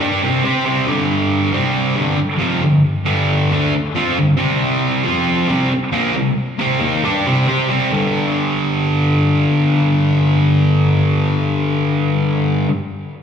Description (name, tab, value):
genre	rock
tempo	136 BPM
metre	4/4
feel	straight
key	unclear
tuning	A4 = 440 Hz
part	fuzz guitar	solo	0.0-12.7 s	F2 to C5	-14 LUFS	equal	distortion, slapback echo
room	moderate lush hall reverb, RT60 2.8 s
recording	live gig heard through the venue's PA, club reverb, lossy compression artefacts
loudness	-14 LUFS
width	side -7 dB against mid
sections	0.9-7.9 A section; 7.9-11.5 B section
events	none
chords	0.0 C5; 0.9 G5; 1.5 C5; 2.0 G5; 4.4 C5; 5.1 F5; 5.5 C5; 7.9 G5